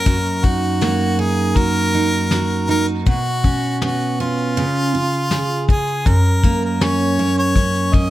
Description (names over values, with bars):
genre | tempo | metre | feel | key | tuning
acoustic pop | 80 BPM | 4/4 | straight | F# major | A4 = 440 Hz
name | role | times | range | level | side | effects
clear harmonica | melody | 0.0-8.1 s | E#4 to D#5 | -21 LUFS | left 1 dB | none
picked steel-string acoustic guitar | accompaniment | 0.0-8.1 s | F#2 to G#4 | -18 LUFS | right 2 dB | none
vintage brush drum kit | drums | 0.1-8.1 s | kick drum, shaker, snare drum | -17 LUFS | left 2 dB | none
room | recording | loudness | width
little or no reverb | none | -15 LUFS | side -14 dB against mid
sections
0.0-6.1 A section; 6.1-8.1 B section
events
none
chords
0.1 D#m/F#; 3.1 Bsus2; 4.6 C#; 6.1 F#